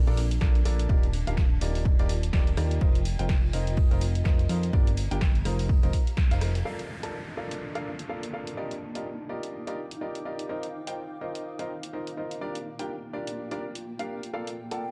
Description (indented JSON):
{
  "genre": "piano house",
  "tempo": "125 BPM",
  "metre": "4/4",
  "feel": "swing 58% on 16ths",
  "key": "Bb major",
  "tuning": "A4 = 441 Hz",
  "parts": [
    { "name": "clear grand piano", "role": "riff", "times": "0.0-14.8 s", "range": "D4 to A5", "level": "-38 LUFS", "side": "equal", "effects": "sidechain pumping, delay" },
    { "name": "fat analog bass", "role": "bass", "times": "0.0-6.6 s", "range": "Eb1 to F2", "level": "-29 LUFS", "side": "equal", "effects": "tube saturation, sidechain pumping" },
    { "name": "granular cloud pad", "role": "texture", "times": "0.0-14.9 s", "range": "Bb3 to D6", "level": "-44 LUFS", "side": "equal", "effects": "built-in reverb, sidechain pumping" },
    { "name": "punchy analog drum machine", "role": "drums", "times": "0.1-14.8 s", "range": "hi-hat, rim click, snare drum", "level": "-40 LUFS", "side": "equal", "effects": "none" },
    { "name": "unplugged drum kit", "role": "drums", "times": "0.2-6.6 s", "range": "hi-hat, ride cymbal, snare drum", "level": "-51 LUFS", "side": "equal", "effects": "sidechain pumping on cymbals, high-pass filter on cymbals, sidechain pumping on hats, high-pass filter on hats, high-pass filter on snare, high-pass filter on room" },
    { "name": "electronic kick drum", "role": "drums", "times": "0.4-6.3 s", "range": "none", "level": "-25 LUFS", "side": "equal", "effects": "none" },
    { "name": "downlifter", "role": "sound effects", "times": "6.7-10.5 s", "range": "none", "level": "-45 LUFS", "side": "equal", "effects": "none" },
    { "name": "mellow hollow concert flute", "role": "melody", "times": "14.7-14.9 s", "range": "G5", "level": "-36 LUFS", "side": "equal", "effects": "none" }
  ],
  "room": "small room ambience",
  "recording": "dark, warm production",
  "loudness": "-28 LUFS",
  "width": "mono",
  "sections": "0.0-6.7 A section; 6.7-14.9 B section",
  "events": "band accent 6.2",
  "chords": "0.0 Bbmaj7; 0.9 Ebmaj9; 2.8 F7sus4; 4.7 Gm7; 5.7 F7sus4; 6.7 Bbmaj7; 8.6 Ebmaj9; 10.5 F7sus4; 12.4 Gm7; 14.3 Bbmaj7"
}